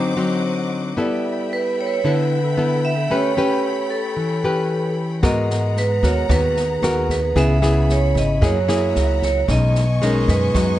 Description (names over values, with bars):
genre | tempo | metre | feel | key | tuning
bossa nova | 113 BPM | 4/4 | straight | unclear | A4 = 439 Hz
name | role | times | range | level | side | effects
vibraphone with medium hard mallets | melody | 0.0-10.8 s | A4 to E5 | -22 LUFS | right 3 dB | none
nylon-string guitar | accompaniment | 0.0-10.8 s | B2 to B4 | -20 LUFS | left 2 dB | none
warm symphonic string section | sustained chords | 0.0-10.8 s | B3 to D6 | -30 LUFS | left 2 dB | none
upright bass | bass | 5.2-10.8 s | G#1 to G#2 | -20 LUFS | right 1 dB | none
open jazz drum kit | drums | 5.2-10.7 s | kick drum, rim click, snare drum | -24 LUFS | equal | none
room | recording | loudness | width
light reverb | nothing above 11.0 kHz | -17 LUFS | side -13 dB against mid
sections
0.0-10.8 A section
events
none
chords
0.0 D7b9; 1.0 G69; 3.1 A9; 5.2 G#m9; 7.4 C#m7; 8.4 F#9; 9.5 B69